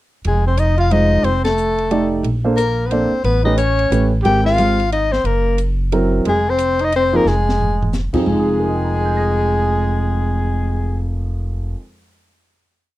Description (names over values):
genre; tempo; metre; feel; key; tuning
jazz, small-group swing and bop; 180 BPM; 3/4; swing 62% on 8ths; F minor; A4 = 439 Hz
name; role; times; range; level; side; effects
upright bass; bass; 0.2-11.7 s; F1 to Bb1; -19 LUFS; equal; none
compact cocktail drum kit; drums; 0.2-8.2 s; crash cymbal, hi-hat, kick drum, ride cymbal, snare drum, toms; -27 LUFS; right 1 dB; none
mellow soprano saxophone; melody; 0.3-11.0 s; Ab4 to G5; -19 LUFS; left 4 dB; slapback echo
breathy trumpet; second line; 0.3-11.0 s; Ab3 to G4; -24 LUFS; right 4 dB; none
warm concert grand piano; accompaniment; 0.9-12.0 s; F2 to Bb6; -19 LUFS; right 1 dB; none
room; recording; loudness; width
little or no reverb; dry, close 1970s-style studio recording; -15 LUFS; side -16 dB against mid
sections
0.2-8.3 A section; 8.3-10.3 final chord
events
band accent 1.4; drum fill 7.3-7.9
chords
0.2 Fm7; 1.2 F13; 2.2 Bbmaj9; 3.2 A9; 4.2 Abmaj9; 5.2 Gb7#11; 6.3 Fm; 8.3 Fm7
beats
| 0.25 0.58 0.92 | 1.25 1.58 1.91 | 2.25 2.58 2.91 | 3.25 3.58 3.91 | 4.25 4.58 4.92 | 5.25 5.58 5.92 | 6.25 6.59 6.92 | 7.26 7.59 7.93 | 8.26 8.60 8.93 | 9.27 9.60 9.93